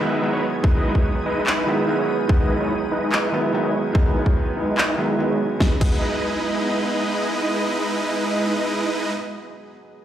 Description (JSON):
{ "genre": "future bass", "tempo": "145 BPM", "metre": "4/4", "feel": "half-time", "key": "E major", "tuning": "A4 = 439 Hz", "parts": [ { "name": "felt-muted upright piano", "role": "accompaniment", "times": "0.0-10.0 s", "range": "D#3 to B3", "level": "-26 LUFS", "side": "right 2 dB", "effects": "sidechain pumping, digital delay" }, { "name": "shimmering ambient pad", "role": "sustained chords", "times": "0.0-8.9 s", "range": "B3 to D#6", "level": "-31 LUFS", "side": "equal", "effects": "chorus, built-in reverb, sidechain pumping" }, { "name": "supersaw chords", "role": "riff", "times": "0.0-9.1 s", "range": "G#3 to E5", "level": "-23 LUFS", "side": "right 1 dB", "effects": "sidechain pumping, low-pass filter, digital delay" }, { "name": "electronic kick drum", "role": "drums", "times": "0.6-5.9 s", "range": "none", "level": "-18 LUFS", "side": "equal", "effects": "overdrive" }, { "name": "dubstep drum kit", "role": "drums", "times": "1.5-5.9 s", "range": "crash cymbal, handclaps, snare drum", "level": "-23 LUFS", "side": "equal", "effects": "none" } ], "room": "moderate digital room reverb, RT60 1.3 s", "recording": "played on a big sound system in a bare room, large studio reverb", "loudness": "-19 LUFS", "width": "side -10 dB against mid", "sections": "0.0-5.6 A section; 5.6-8.9 B section", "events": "filter sweep on supersaw synth 0.0-5.6; filter sweep on ambient pad 0.0-5.6", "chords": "0.0 Emaj7" }